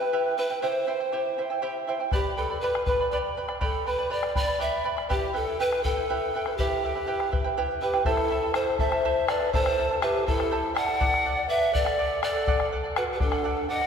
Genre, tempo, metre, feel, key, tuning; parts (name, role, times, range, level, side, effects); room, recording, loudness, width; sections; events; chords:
andean folk, Andean ensemble; 81 BPM (dotted quarters); 6/8; straight; A4 = 440 Hz
breathy hollow pan flute; melody; 0.0-13.9 s; G4 to F#5; -27 LUFS; equal
charango; accompaniment; 0.0-13.9 s; E4 to B5; -29 LUFS; right 3 dB
bombo; percussion; 2.1-13.9 s; -30 LUFS; left 2 dB
reedy pan flute; second line; 7.8-13.9 s; D4 to D#5; -31 LUFS; left 3 dB
wet concert hall reverb, RT60 2.5 s; recorded in a church or concert hall; -24 LUFS; side -7 dB against mid
0.0-8.1 A section; 8.1-13.9 B section
0.0 Em; 0.6 C; 2.1 G; 5.1 Em; 8.1 Am; 11.0 D